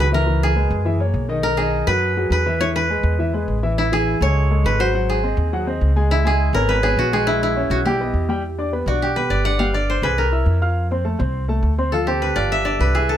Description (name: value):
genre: Afro-Cuban jazz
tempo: 206 BPM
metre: 4/4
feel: straight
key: E minor from 8.4 s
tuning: A4 = 440 Hz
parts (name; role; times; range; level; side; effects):
- koto; melody; 0.0-13.2 s; D#4 to F#5; -21 LUFS; right 1 dB; none
- warm concert grand piano; accompaniment; 0.0-13.2 s; D#3 to G#6; -24 LUFS; left 2 dB; none
- upright bass; bass; 0.0-13.2 s; G1 to F#2; -20 LUFS; equal; none
room: light reverb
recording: close, detailed microphones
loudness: -17 LUFS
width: side -10 dB against mid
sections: 0.0-8.4 A section; 8.4-13.2 B section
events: koto solo 8.4-13.2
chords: 0.3 C#m7; 0.8 F#7; 1.4 B6; 2.6 E; 3.8 Amaj7; 4.9 G#7; 6.1 C#5; 7.3 A#m7b5; 7.8 Baug; 8.4 Em7; 9.6 G5; 10.2 Caug7; 10.8 F; 11.9 Dm7; 12.5 G5